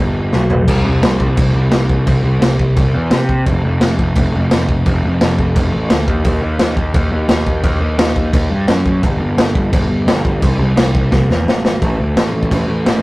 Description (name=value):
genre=punk rock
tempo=173 BPM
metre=4/4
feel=straight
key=unclear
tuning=A4 = 439 Hz
part: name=fuzz picked electric bass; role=bass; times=0.0-13.0 s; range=F1 to C3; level=-15 LUFS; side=equal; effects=overdrive
part: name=raw garage drum kit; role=drums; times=0.3-12.9 s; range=crash cymbal, kick drum, snare drum, toms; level=-15 LUFS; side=equal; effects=none
room=light reverb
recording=rough rehearsal-room recording, tube saturation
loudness=-12 LUFS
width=side -21 dB against mid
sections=0.7-11.8 A section; 11.8-13.0 B section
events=drum fill 0.3-0.7, 11.1-11.8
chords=none